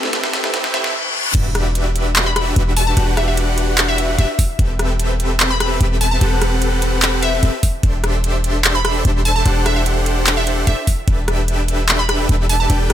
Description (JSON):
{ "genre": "future bass", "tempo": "148 BPM", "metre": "4/4", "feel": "half-time", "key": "E minor", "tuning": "A4 = 440 Hz", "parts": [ { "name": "warm concert grand piano", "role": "accompaniment", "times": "0.0-0.8 s", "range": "A3 to B4", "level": "-32 LUFS", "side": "right 4 dB", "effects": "none" }, { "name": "ethereal airy pad", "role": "sustained chords", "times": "0.0-0.9 s", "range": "E3 to B4", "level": "-44 LUFS", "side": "left 2 dB", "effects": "none" }, { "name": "supersaw chords", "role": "riff", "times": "0.0-12.9 s", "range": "C4 to G5", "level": "-21 LUFS", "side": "equal", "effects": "sidechain pumping" }, { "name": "dubstep drum kit", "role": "drums", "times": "0.0-12.9 s", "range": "crash cymbal, handclaps, hi-hat, rim click, snare drum, toms", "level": "-19 LUFS", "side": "equal", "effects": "high-pass filter on snare, high-pass filter on hats, high-pass filter on toms, high-pass filter on cymbals, high-pass filter on room" }, { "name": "riser and reverse cymbal", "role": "sound effects", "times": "0.0-1.3 s", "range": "none", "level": "-23 LUFS", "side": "left 3 dB", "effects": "none" }, { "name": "glassy wavetable pluck", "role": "melody", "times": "0.7-12.9 s", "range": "E5 to B5", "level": "-24 LUFS", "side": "equal", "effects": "chorus, sidechain pumping, dub echo" }, { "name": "warm 808-style bass", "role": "bass", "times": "1.3-12.9 s", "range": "E1", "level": "-18 LUFS", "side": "equal", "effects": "tube saturation, sidechain pumping" }, { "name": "electronic kick drum", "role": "drums", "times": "1.3-1.4, 4.4-4.7, 7.6-7.9, 10.9-11.2 s", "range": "none", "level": "-16 LUFS", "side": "equal", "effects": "none" } ], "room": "little or no reverb", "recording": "high-pass filter", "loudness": "-14 LUFS", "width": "side -11 dB against mid", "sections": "0.0-1.3 A section; 1.3-12.9 B section", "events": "build-up 0.0-1.3; drum fill 0.0-0.9, 1.0-1.3; riser 0.0-0.9; reverse cymbal 0.5-1.3; drop 1.3-12.9", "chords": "0.0 Am9/E; 1.3 Em9; 4.6 Am9/E; 7.8 D9sus4/E; 11.1 G69/E" }